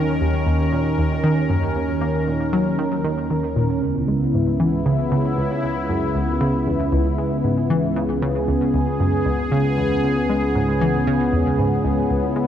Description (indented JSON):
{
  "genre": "ambient, sequencer-driven space music",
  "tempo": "116 BPM",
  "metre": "4/4",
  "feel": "straight",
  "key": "C# dorian",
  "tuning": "A4 = 440 Hz",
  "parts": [
    { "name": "sweeping resonant pad", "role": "sustained chords", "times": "0.0-12.5 s", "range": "C#2 to A#4", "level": "-20 LUFS", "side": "equal", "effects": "chorus" },
    { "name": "analog pluck", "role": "riff", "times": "0.0-12.5 s", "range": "C#2 to A#3", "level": "-22 LUFS", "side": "equal", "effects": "chorus, tape echo" }
  ],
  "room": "wet lush hall reverb, RT60 2.9 s",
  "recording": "none",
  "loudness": "-18 LUFS",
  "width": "side -10 dB against mid",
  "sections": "0.0-12.5 A section",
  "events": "none",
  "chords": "0.0 D#7(no3); 3.8 C#m7"
}